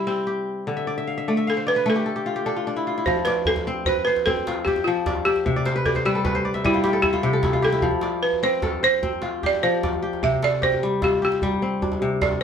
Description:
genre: west african traditional, West African string and xylophone music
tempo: 101 BPM (dotted quarters)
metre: 12/8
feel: straight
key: F lydian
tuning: A4 = 440 Hz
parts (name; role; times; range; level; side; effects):
- balafon; melody; 0.0-12.4 s; E4 to E5; -22 LUFS; right 2 dB; none
- kora; arpeggios; 0.0-12.4 s; C3 to F5; -23 LUFS; left 2 dB; none
- djembe; percussion; 3.1-12.4 s; none; -29 LUFS; right 2 dB; none
room: wet studio ambience, RT60 0.5 s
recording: band playing live in one room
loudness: -20 LUFS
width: side -7 dB against mid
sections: 0.0-3.1 A section; 3.1-12.4 B section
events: kora fill 0.8-3.1, 5.5-7.8; balafon solo 3.1-12.4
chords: 0.0 C; 0.7 D5; 3.1 F; 5.5 C; 7.8 F; 10.2 C5

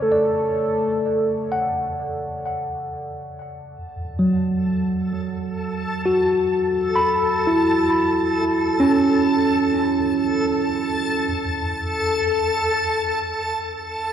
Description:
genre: ambient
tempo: free time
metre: none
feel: none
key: unclear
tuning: A4 = 441 Hz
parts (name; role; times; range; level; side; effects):
- warm velvety synth lead; melody; 0.0-1.9 s; A4; -22 LUFS; right 1 dB; chorus, tremolo, tape echo
- tine electric piano; arpeggios; 0.0-11.3 s; F#3 to B5; -21 LUFS; right 1 dB; tape echo
- backwards swelling texture; texture; 4.7-14.1 s; A4 to A5; -23 LUFS; left 2 dB; built-in reverb
room: wet echo chamber reverb, RT60 2.1 s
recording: echo-heavy mix, cassette tape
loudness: -19 LUFS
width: side -8 dB against mid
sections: 0.0-14.1 A section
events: fade-in on tine electric piano 0.0-14.1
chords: 0.0 Dmaj7; 3.8 F#madd11; 11.3 N.C.

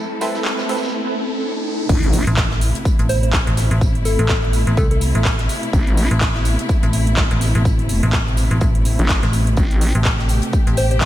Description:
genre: bass house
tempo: 125 BPM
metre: 4/4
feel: swing 58% on 16ths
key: A minor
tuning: A4 = 440 Hz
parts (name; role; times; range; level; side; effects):
- dark symphonic string section; sustained chords; 0.0-11.1 s; B2 to A4; -25 LUFS; equal; sidechain pumping
- riser and impact; sound effects; 0.0-3.8 s; none; -26 LUFS; equal; none
- band-passed chord stab; stabs; 0.2-0.8 s; C4 to B4; -24 LUFS; right 3 dB; chorus, sidechain pumping, diffuse ambient delay
- big-room dance drum kit; drums; 0.2-11.1 s; crash cymbal, handclaps, hi-hat, shaker; -25 LUFS; equal; small room ambience
- tight metal drum kit; drums; 0.2-11.1 s; hi-hat, snare drum, tambourine; -34 LUFS; equal; sidechain pumping on hats, high-pass filter on hats, low-pass filter on hats, small room ambience, high-pass filter on snare, low-pass filter on snare, sidechain pumping on perc, high-pass filter on perc, low-pass filter on perc, high-pass filter on room, low-pass filter on room
- vowel-sweep wobble bass; bass; 1.9-2.2, 5.7-6.1, 9.0-9.9 s; A1; -18 LUFS; equal; chorus, tube saturation, sidechain pumping
- electronic kick drum; drums; 1.9-11.1 s; none; -18 LUFS; equal; small room ambience
- metallic FM bass; bass; 2.3-11.1 s; A1 to C2; -17 LUFS; equal; tube saturation, sidechain pumping
- soft struck synth lead; melody; 3.1-5.0, 10.8-11.0 s; A4 to C5; -24 LUFS; equal; chorus, diffuse ambient delay
room: light reverb, studio reverb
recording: none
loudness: -15 LUFS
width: side -13 dB against mid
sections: 0.0-1.9 A section; 1.9-11.1 B section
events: riser 0.0-1.9; drop 1.9-11.1; impact 1.9-3.8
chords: 0.0 Amadd9

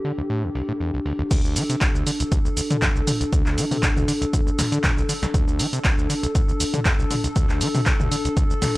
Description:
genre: acid house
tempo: 119 BPM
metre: 4/4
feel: swing 54% on 16ths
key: unclear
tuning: A4 = 438 Hz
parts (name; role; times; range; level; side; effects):
- warbly tape-like pad; sustained chords; 0.0-8.8 s; G4 to A4; -32 LUFS; left 3 dB; chorus, built-in reverb, sidechain pumping
- overdriven acid bass; riff; 0.0-8.8 s; C2 to F3; -26 LUFS; equal; distortion, sidechain pumping
- punchy analog drum machine; drums; 0.0-8.8 s; crash cymbal, handclaps, hi-hat, shaker, snare drum, toms; -25 LUFS; equal; low-pass filter on hats, low-pass filter on perc, low-pass filter on cymbals, low-pass filter on snare, low-pass filter on toms
- warbly tape-like pad; texture; 0.0-8.8 s; D4 to A5; -28 LUFS; left 1 dB; chorus, built-in reverb, sidechain pumping
- electronic kick drum; drums; 1.3-8.5 s; none; -21 LUFS; equal; none
room: little or no reverb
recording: dry, gritty hardware recording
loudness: -19 LUFS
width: side -19 dB against mid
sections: 0.0-1.3 A section; 1.3-8.8 B section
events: drop 1.3-8.8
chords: 0.0 D5

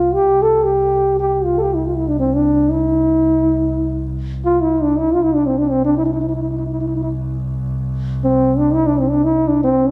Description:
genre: Arabic maqam ensemble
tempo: free time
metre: none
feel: none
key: C maqam rast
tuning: A4 = 441 Hz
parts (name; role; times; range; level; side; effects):
- dark trombone; melody; 0.0-9.9 s; C4 to A4; -17 LUFS; equal; none
- rich double bass; drone; 0.0-9.9 s; C2; -25 LUFS; equal; none
room: wet recital hall reverb, RT60 1.5 s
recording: recorded in a church or concert hall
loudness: -17 LUFS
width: mono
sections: 0.0-9.9 A section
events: none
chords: none

